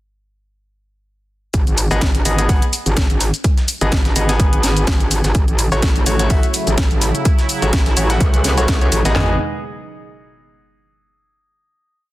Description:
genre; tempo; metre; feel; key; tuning
bass house; 126 BPM; 4/4; swing 55% on 16ths; G# phrygian; A4 = 438 Hz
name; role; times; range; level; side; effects
metallic wobble bass; bass; 1.5-9.4 s; G#1 to C#2; -18 LUFS; equal; chorus, overdrive, sidechain pumping
breakbeat sampler-style drum kit; drums; 1.5-9.2 s; hi-hat, snare drum; -31 LUFS; right 2 dB; none
house drum kit; drums; 1.5-9.3 s; handclaps, kick drum, snare drum, toms; -16 LUFS; equal; overdrive
house drum kit; drums; 1.5-9.1 s; hi-hat, shaker, snare drum; -22 LUFS; equal; overdrive
bright grand piano; stabs; 1.9-9.3 s; A3 to G#5; -22 LUFS; left 2 dB; sidechain pumping, tape echo
sweeping resonant pad; sustained chords; 5.3-9.4 s; B2 to G#4; -24 LUFS; right 1 dB; chorus, sidechain pumping
room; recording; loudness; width
digital ambience; dense, heavily limited modern master; -14 LUFS; side -17 dB against mid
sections
1.5-9.2 drop; 9.2-11.1 final chord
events
drop 1.5-9.2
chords
1.5 G#m; 5.3 A6; 9.2 G#m

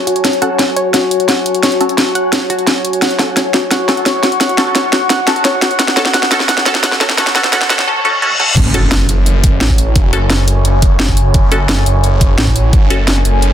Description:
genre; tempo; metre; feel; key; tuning
dark technical drum and bass; 173 BPM; 4/4; straight; F# minor; A4 = 440 Hz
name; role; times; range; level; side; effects
deep dark ambient pad; sustained chords; 0.0-13.5 s; F#4 to C#6; -20 LUFS; left 2 dB; chorus, built-in reverb, sidechain pumping
warbly tape-like pad; texture; 0.0-13.5 s; F#4 to G#5; -20 LUFS; left 1 dB; chorus, built-in reverb, sidechain pumping
analog pluck; arpeggios; 0.1-7.8 s; F#4 to F#5; -20 LUFS; right 1 dB; chorus, sidechain pumping, digital delay
drum and bass drum kit; drums; 0.1-13.5 s; crash cymbal, hi-hat, snare drum, toms; -14 LUFS; equal; overdrive
filtered dub chord stab; stabs; 0.4-13.0 s; C#4 to A4; -18 LUFS; equal; phaser, digital delay
riser, reverse cymbal and impact; sound effects; 6.6-10.0 s; none; -20 LUFS; equal; none
phased detuned saw bass; bass; 8.6-13.5 s; F#1 to A1; -12 LUFS; equal; phaser
electronic kick drum; drums; 8.6-12.8 s; none; -12 LUFS; equal; overdrive
room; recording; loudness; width
moderate digital room reverb, RT60 1.2 s; dense, heavily limited modern master, high-pass filter; -10 LUFS; side -10 dB against mid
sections
0.0-8.6 A section; 8.6-13.5 B section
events
build-up 0.0-8.6; drum fill 0.0-7.9, 8.3; filter sweep on synth arpeggio sound 0.0-8.6; filter sweep on synth stab 0.0-8.6; filter sweep 0.0-8.6; reverse cymbal 7.9-8.6; drop 8.6-13.5; impact 8.6-10.0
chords
0.0 F#m

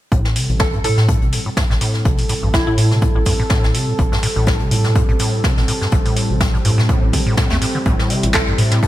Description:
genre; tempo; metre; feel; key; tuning
acid house; 124 BPM; 4/4; swing 55% on 16ths; A minor pentatonic; A4 = 440 Hz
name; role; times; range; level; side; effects
warm analog pad; sustained chords; 0.1-8.9 s; G3 to A4; -24 LUFS; right 1 dB; chorus, sidechain pumping
acid bass, square; riff; 0.1-8.9 s; G2 to A3; -20 LUFS; equal; overdrive
round analog bass; bass; 0.1-8.9 s; A1 to A2; -19 LUFS; equal; tube saturation, sidechain pumping
electronic kick drum; drums; 0.1-8.9 s; none; -18 LUFS; equal; small room reverb
jazz brush drum kit; drums; 0.1-8.9 s; hi-hat, snare drum; -26 LUFS; left 2 dB; high-pass filter on hats, small room reverb, high-pass filter on snare, high-pass filter on room
booming analog drum machine; drums; 0.4-8.8 s; handclaps, hi-hat; -24 LUFS; equal; small room reverb
mallet-like synth pluck; melody; 0.6-2.7, 8.3-8.5 s; E4 to A4; -24 LUFS; equal; wide subtle chorus, cassette tape, ping-pong delay
room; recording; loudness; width
light reverb, digital ambience; bright 1980s-style digital production; -14 LUFS; side -14 dB against mid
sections
0.1-8.9 A section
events
filter sweep on acid bass 0.1-8.9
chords
0.1 Am7

